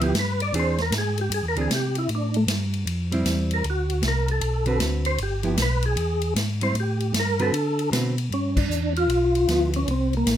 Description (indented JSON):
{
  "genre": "soul jazz organ trio",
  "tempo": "154 BPM",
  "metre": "4/4",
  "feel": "swing 64% on 8ths",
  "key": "G mixolydian",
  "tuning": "A4 = 440 Hz",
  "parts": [
    { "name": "percussive tonewheel organ", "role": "melody", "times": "0.0-10.4 s", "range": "A3 to D5", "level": "-25 LUFS", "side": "equal", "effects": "chorus vibrato, fast rotary speaker" },
    { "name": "hollow-body jazz guitar", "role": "accompaniment", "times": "0.0-9.9 s", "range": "D3 to B4", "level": "-26 LUFS", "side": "right 2 dB", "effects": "none" },
    { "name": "mellow tonewheel organ", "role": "bass", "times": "0.0-10.4 s", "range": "G1 to D3", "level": "-25 LUFS", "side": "equal", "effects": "slow rotary speaker" },
    { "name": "swinging big-band drum kit", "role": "drums", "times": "0.0-10.4 s", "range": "crash cymbal, hi-hat, kick drum, ride cymbal, snare drum", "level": "-29 LUFS", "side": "equal", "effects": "none" }
  ],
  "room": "light reverb",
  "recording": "minimal, uncompressed stereo recording",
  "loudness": "-21 LUFS",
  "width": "side -10 dB against mid",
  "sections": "0.0-8.3 A section; 8.3-10.4 B section",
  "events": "tonewheel organ solo 0.0-8.3; band accent 8.5",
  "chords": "0.0 G13; 0.5 E7alt; 2.1 Am7; 3.6 D6; 5.2 G6; 6.0 Eaug; 6.8 Am7; 7.5 D6; 8.3 G6; 9.9 C7(no3)"
}